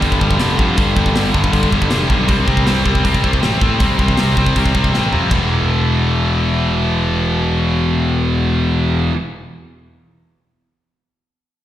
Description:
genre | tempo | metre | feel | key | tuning
heavy metal | 159 BPM | 4/4 | straight | E minor | A4 = 444 Hz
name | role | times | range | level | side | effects
scooped high-gain guitar | riff | 0.0-9.2 s | E2 to C4 | -20 LUFS | right 8 dB | distortion
tight distorted guitar | riff | 0.0-9.2 s | E2 to C4 | -18 LUFS | left 5 dB | distortion
fuzz picked electric bass | bass | 0.0-9.1 s | E1 to A2 | -18 LUFS | right 1 dB | overdrive
tight metal drum kit | drums | 0.0-5.4 s | crash cymbal, hi-hat, kick drum, snare drum, toms | -18 LUFS | equal | none
room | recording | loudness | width
studio ambience | live gig heard through the venue's PA, recital hall reverb | -13 LUFS | side -12 dB against mid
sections
0.0-5.3 A section; 5.3-8.3 B section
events
drum fill 4.9-5.3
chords
0.0 G5; 2.3 C5; 5.3 E5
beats
0.02 0.39 | 0.77 1.15 1.52 1.90 | 2.28 2.65 3.03 3.41 | 3.79 4.17 4.54 4.92 | 5.30 5.68 6.06 6.44 | 6.82 7.19 7.57 7.95

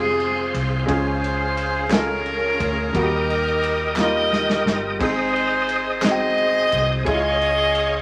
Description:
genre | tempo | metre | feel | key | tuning
slow gospel | 58 BPM (dotted quarters) | 6/8 | straight | Ab major | A4 = 440 Hz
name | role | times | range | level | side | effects
bright saxophone section | melody | 0.0-8.0 s | C4 to Eb5 | -24 LUFS | equal | none
clear concert grand piano | accompaniment | 0.0-8.0 s | Ab2 to G5 | -28 LUFS | equal | none
bright tonewheel organ | sustained chords | 0.0-8.0 s | Db4 to Eb6 | -29 LUFS | equal | fast rotary speaker, chorus vibrato
hollow-body short-scale fingered electric bass | bass | 0.0-8.0 s | F1 to Eb2 | -31 LUFS | equal | none
modern studio drum kit | drums | 0.2-7.9 s | crash cymbal, kick drum, ride cymbal, snare drum | -31 LUFS | equal | none
group handclap | percussion | 1.9-6.3 s | none | -32 LUFS | equal | none
room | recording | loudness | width
wet small room reverb, RT60 0.5 s | vinyl crackle | -21 LUFS | mono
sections
0.0-8.0 A section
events
drum fill 4.0-5.0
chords
0.0 Fm; 0.9 Db; 2.9 Eb; 5.0 Ab; 7.1 Db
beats
| 0.89 1.92 | 2.95 3.98 | 5.01 6.04 | 7.07

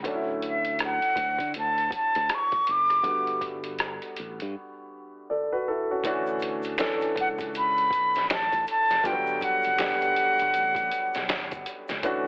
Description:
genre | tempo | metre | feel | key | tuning
R&B, neo-soul | 80 BPM | 4/4 | swing 60% on 16ths | D major | A4 = 444 Hz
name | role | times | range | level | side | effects
warm upright piano | accompaniment | 0.0-12.3 s | D3 to D5 | -33 LUFS | equal | none
boom bap sampler-style drum kit | drums | 0.0-12.2 s | hi-hat, kick drum, rim click, snare drum | -35 LUFS | equal | none
modern bright fingered electric bass | bass | 0.1-12.3 s | F#1 to D3 | -42 LUFS | equal | none
breathy concert flute | melody | 0.5-11.7 s | E5 to D6 | -26 LUFS | equal | none
egg shaker and finger snaps | percussion | 6.0-12.3 s | none | -34 LUFS | equal | none
room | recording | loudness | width
light reverb | heavily compressed radio sound, multiband compression, telephone sound | -26 LUFS | mono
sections
0.0-6.0 A section; 6.0-12.3 B section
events
none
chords
0.0 Dmaj7; 3.0 Gmaj9; 6.0 Dmaj7; 9.0 Gmaj9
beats
| 0.04 0.79 1.54 2.29 | 3.04 3.79 4.54 5.29 | 6.04 6.79 7.54 8.29 | 9.04 9.79 10.54 11.29 | 12.04

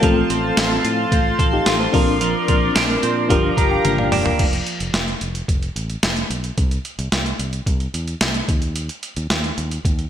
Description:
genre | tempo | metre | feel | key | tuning
1980s-style pop | 110 BPM | 4/4 | straight | G minor | A4 = 440 Hz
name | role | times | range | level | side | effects
FM electric piano with tremolo | accompaniment | 0.0-4.5 s | A3 to Bb5 | -21 LUFS | left 3 dB | none
chorused pulse-width pad | sustained chords | 0.0-4.4 s | G4 to C6 | -23 LUFS | equal | none
twelve-string electric guitar | riff | 0.0-4.9 s | F3 to A4 | -23 LUFS | right 5 dB | lush chorus, digital delay
fingered electric bass | bass | 0.0-10.0 s | E1 to Bb2 | -25 LUFS | equal | none
boom bap sampler-style drum kit | drums | 0.0-10.1 s | crash cymbal, hi-hat, kick drum, snare drum, tambourine, toms | -20 LUFS | equal | gated reverb
room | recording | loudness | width
moderate lush hall reverb, RT60 1.7 s | bright 1980s-style digital production | -17 LUFS | side -10 dB against mid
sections
0.0-4.4 A section; 4.4-10.1 B section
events
FM electric piano fill 3.3-4.4; drum fill 3.8-4.4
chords
0.0 F/A; 1.9 Bbadd9; 3.3 Gm7; 4.4 N.C.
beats
| 0.03 0.58 1.12 1.67 | 2.21 2.76 3.30 3.85 | 4.39 4.94 5.49 6.03 | 6.58 7.12 7.67 8.21 | 8.76 9.30 9.85

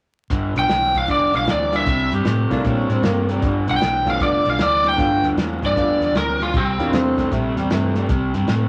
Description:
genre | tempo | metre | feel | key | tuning
electric blues shuffle | 154 BPM | 4/4 | swing 65% on 8ths | G mixolydian | A4 = 439 Hz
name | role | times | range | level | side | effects
raw garage guitar | riff | 0.3-8.7 s | G2 to A3 | -25 LUFS | equal | overdrive, spring reverb
vintage muted fingered electric bass | bass | 0.3-8.7 s | F1 to C3 | -27 LUFS | equal | none
warm soul drum kit | drums | 0.3-8.6 s | hi-hat, kick drum, snare drum | -27 LUFS | equal | none
lead guitar through a small cranked amp | melody | 0.6-6.9 s | C4 to G5 | -21 LUFS | equal | overdrive
clear upright piano | accompaniment | 1.7-7.3 s | G3 to F4 | -29 LUFS | equal | none
growling tenor saxophone | second line | 2.1-3.5, 6.9-8.1 s | E3 to G4 | -28 LUFS | equal | none
room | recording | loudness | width
wet small room reverb, RT60 0.5 s | vinyl crackle | -19 LUFS | mono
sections
0.3-8.7 A section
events
none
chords
0.3 G7; 1.9 C7; 3.4 G7; 6.5 C7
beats
| 0.30 0.69 1.08 1.47 | 1.86 2.25 2.64 3.03 | 3.42 3.81 4.20 4.59 | 4.98 5.37 5.76 6.14 | 6.53 6.92 7.31 7.70 | 8.08 8.47

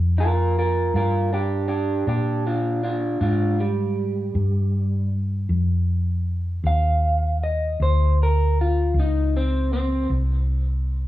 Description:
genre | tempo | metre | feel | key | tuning
slow blues | 52 BPM (dotted quarters) | 12/8 | straight | unclear | A4 = 440 Hz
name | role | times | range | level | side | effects
hollow-body short-scale fingered electric bass | bass | 0.0-11.1 s | C2 to Bb2 | -21 LUFS | equal | none
electric guitar through a small old amp | melody | 0.2-10.1 s | G3 to F5 | -24 LUFS | right 1 dB | none
room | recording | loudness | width
light reverb | worn, warbling old tape, cassette tape, warbly pitch drift, small room ambience | -20 LUFS | side -14 dB against mid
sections
0.0-11.1 A section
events
clean electric guitar solo 0.0-11.1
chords
0.0 N.C.; 0.9 Gm7; 5.5 Dbmaj9; 10.1 N.C.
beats
| 0.93 2.07 3.21 4.36 | 5.50 6.65 7.79 8.94 | 10.09

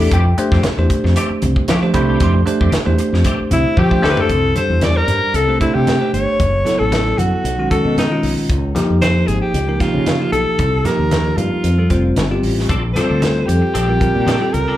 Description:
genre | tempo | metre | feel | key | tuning
electric jazz fusion | 114 BPM | 4/4 | swing 54% on 16ths | unclear | A4 = 440 Hz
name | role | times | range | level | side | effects
bell-like tine electric piano | accompaniment | 0.0-14.8 s | D#3 to C6 | -19 LUFS | moving between left 2 dB and right 4 dB | auto-pan, plate reverb, slapback echo
clean electric guitar | stabs | 0.0-4.3, 12.7-14.8 s | E3 to A4 | -26 LUFS | left 1 dB | ensemble chorus, plate reverb, slapback echo
woody fretless electric bass | bass | 0.0-14.7 s | F1 to F3 | -17 LUFS | equal | lush chorus
crisp fusion drum kit | drums | 0.1-14.7 s | hi-hat, kick drum, snare drum, toms | -21 LUFS | equal | none
congas | percussion | 0.1-14.4 s | none | -24 LUFS | left 1 dB | none
clear alto saxophone | melody | 3.5-14.8 s | D#4 to D5 | -19 LUFS | left 1 dB | plate reverb, slapback echo, analog delay
room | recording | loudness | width
light reverb | live gig heard through the venue's PA, club reverb | -13 LUFS | side -13 dB against mid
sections
0.0-4.3 A section; 4.3-14.8 B section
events
tine electric piano fill 3.5-4.3; drum fill 3.8-4.3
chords
0.1 Fmaj9; 4.3 C69; 6.4 F#m7; 7.4 Badd9; 8.5 Dbadd9; 10.6 Cm7; 11.6 Fadd9; 12.7 Bbmaj9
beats
| 0.12 0.64 1.16 1.68 | 2.21 2.73 3.25 3.77 | 4.30 4.82 5.35 5.87 | 6.39 6.92 7.44 7.97 | 8.49 9.02 9.54 10.07 | 10.59 11.12 11.64 12.17 | 12.69 13.22 13.74 14.27

